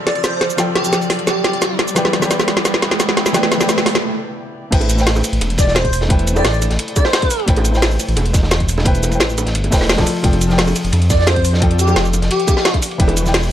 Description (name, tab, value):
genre	liquid drum and bass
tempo	174 BPM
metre	4/4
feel	straight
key	A minor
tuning	A4 = 440 Hz
part	felt-muted upright piano	accompaniment	0.0-13.5 s	E3 to A5	-22 LUFS	left 1 dB	vintage 12-bit sampler grit, ping-pong delay
part	rich chamber string section	sustained chords	0.0-4.7 s	B3 to D5	-26 LUFS	equal	none
part	riser	sound effects	0.0-4.0 s	none	-22 LUFS	right 1 dB	none
part	airy dreamy lead	melody	0.1-1.7, 5.6-7.4, 11.1-12.7 s	G4 to D5	-21 LUFS	equal	chorus, dub echo
part	drum and bass drum kit	drums	0.1-13.5 s	crash cymbal, hi-hat, shaker, snare drum	-18 LUFS	equal	none
part	dark detuned saw bass	bass	4.7-13.5 s	E1 to F2	-17 LUFS	equal	none
part	crunchy breakbeat drum kit	drums	4.7-13.5 s	hi-hat, ride cymbal, snare drum	-24 LUFS	equal	high-pass filter on cymbals, high-pass filter on hats, high-pass filter on snare, high-pass filter on room
part	electronic kick drum	drums	4.7-13.1 s	none	-16 LUFS	equal	none
part	bongos	percussion	4.8-13.4 s	none	-27 LUFS	right 4 dB	none
room	light reverb, small room ambience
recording	none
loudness	-13 LUFS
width	side -11 dB against mid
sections	0.0-4.7 A section; 4.7-13.5 B section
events	build-up 0.0-4.7; drum fill 0.0-4.0; riser 0.0-4.0; break 4.0-4.7; drop 4.7-13.5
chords	0.0 F6; 2.0 Em7; 4.7 Am7; 10.1 F6; 13.0 Em7